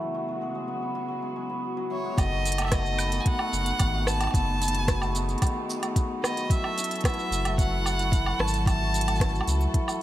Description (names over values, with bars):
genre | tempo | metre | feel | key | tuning
folktronica | 111 BPM | 4/4 | straight | unclear | A4 = 440 Hz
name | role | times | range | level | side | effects
vibraphone with soft mallets | second line | 0.0-10.0 s | F#4 to C#6 | -35 LUFS | equal | vintage 12-bit sampler grit, tape echo
dark string quartet | sustained chords | 0.0-10.0 s | C#3 to A4 | -36 LUFS | equal | vintage 12-bit sampler grit
cimbalom | arpeggios | 0.0-10.0 s | D#3 to C#4 | -34 LUFS | left 2 dB | tape echo
warm violin | melody | 1.9-9.7 s | C#5 to A5 | -31 LUFS | equal | tape echo
warm sub bass | bass | 2.2-9.7 s | F#1 to C#2 | -28 LUFS | equal | none
electronic kick drum | drums | 2.2-9.9 s | none | -24 LUFS | equal | none
organic electronic drum kit | drums | 2.2-10.0 s | hi-hat, rim click, shaker, woodblock | -31 LUFS | right 2 dB | none
room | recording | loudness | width
studio ambience | none | -24 LUFS | side -13 dB against mid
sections
0.0-2.2 A section; 2.2-10.0 B section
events
filter sweep on hammered dulcimer 0.0-2.2; filter sweep on string quartet 0.0-2.2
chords
0.0 C#7sus4; 2.2 B7/F#; 6.5 F#m7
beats
| 0.01 0.56 1.10 1.64 | 2.18 2.72 3.26 3.80 | 4.34 4.88 5.42 5.96 | 6.50 7.04 7.58 8.12 | 8.66 9.20 9.74